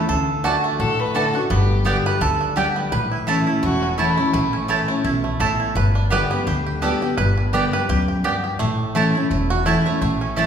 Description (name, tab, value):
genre	bluegrass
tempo	169 BPM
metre	4/4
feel	swing 56% on 8ths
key	A mixolydian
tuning	A4 = 439 Hz
part	bluegrass banjo	melody	0.0-10.5 s	A3 to B4	-24 LUFS	right 3 dB	none
part	picked steel-string acoustic guitar	accompaniment	0.0-10.5 s	E2 to G4	-22 LUFS	left 1 dB	none
part	upright bass	bass	0.1-10.4 s	E1 to D2	-24 LUFS	equal	none
part	mandolin	stabs	0.4-10.5 s	A3 to A5	-25 LUFS	right 4 dB	none
part	warm fiddle	second line	0.8-4.7 s	E4 to B4	-24 LUFS	left 3 dB	none
part	mandolin	melody	9.9-10.5 s	C#5 to E5	-33 LUFS	equal	none
room	wet recital hall reverb, RT60 1.7 s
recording	recorded in a church or concert hall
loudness	-17 LUFS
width	side -8 dB against mid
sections	0.0-10.0 A section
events	five-string banjo solo 0.0-10.0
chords	0.1 D; 1.5 G; 2.9 A; 5.8 G; 8.6 A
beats	| 0.09 0.45 0.80 1.16 | 1.51 1.86 2.22 2.57 | 2.92 3.28 3.63 3.99 | 4.34 4.70 5.05 5.40 | 5.76 6.11 6.47 6.82 | 7.18 7.53 7.89 8.24 | 8.60 8.95 9.31 9.66 | 10.02 10.37